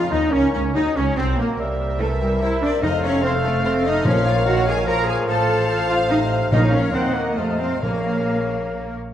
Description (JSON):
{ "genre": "quick classical-period movement for symphony orchestra", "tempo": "145 BPM", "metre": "3/4", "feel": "rubato", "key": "Bb minor", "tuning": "A4 = 440 Hz", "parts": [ { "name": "rich studio violin section", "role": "melody", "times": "0.0-8.9 s", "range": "Bb3 to Gb5", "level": "-35 LUFS", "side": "left 5 dB", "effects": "none" }, { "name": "dark clarinet", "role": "second line", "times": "0.0-9.0 s", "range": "Bb3 to Eb5", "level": "-30 LUFS", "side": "left 2 dB", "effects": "none" }, { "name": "flute section", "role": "second line", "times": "0.0-8.9 s", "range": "G4 to Bb5", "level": "-31 LUFS", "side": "left 2 dB", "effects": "none" }, { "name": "warm chamber violin section", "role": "second line", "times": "0.0-8.9 s", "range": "G4 to Bb5", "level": "-31 LUFS", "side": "left 4 dB", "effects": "none" }, { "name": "mellow bassoon", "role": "accompaniment", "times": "0.0-9.0 s", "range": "C3 to Bb3", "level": "-28 LUFS", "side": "equal", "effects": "none" }, { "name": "dark French horn section", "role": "sustained chords", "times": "0.0-9.0 s", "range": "Bb3 to Eb5", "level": "-28 LUFS", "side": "left 4 dB", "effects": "none" }, { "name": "rich chamber double bass section", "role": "bass", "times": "0.0-9.0 s", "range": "F1 to F2", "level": "-25 LUFS", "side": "right 2 dB", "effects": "none" }, { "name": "rich symphonic cello section", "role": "bass", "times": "0.0-8.9 s", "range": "G3 to Bb4", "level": "-24 LUFS", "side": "right 1 dB", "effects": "none" }, { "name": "mellow cor anglais", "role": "second line", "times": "0.1-8.9 s", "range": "Bb3 to Gb5", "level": "-31 LUFS", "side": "left 1 dB", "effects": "none" }, { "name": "rich studio viola section", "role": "accompaniment", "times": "0.1-8.9 s", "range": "Bb3 to Eb5", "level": "-32 LUFS", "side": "equal", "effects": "none" }, { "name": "mellow trumpet", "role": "stabs", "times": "0.1-8.9 s", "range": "Bb3 to Gb5", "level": "-29 LUFS", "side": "equal", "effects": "none" }, { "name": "timpani", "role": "percussion", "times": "2.8-8.5 s", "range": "F2 to Bb2", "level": "-25 LUFS", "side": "equal", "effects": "none" } ], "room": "wet scoring stage reverb, RT60 1.7 s", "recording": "dark, warm production", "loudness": "-17 LUFS", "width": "side -10 dB against mid", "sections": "0.0-9.1 A section", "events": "none", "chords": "0.3 Gb/Db; 1.6 C7; 2.8 F7; 4.1 Bbm; 5.3 F/A; 6.5 Bbm; 6.9 Ebm; 7.4 F7; 7.8 Bbm" }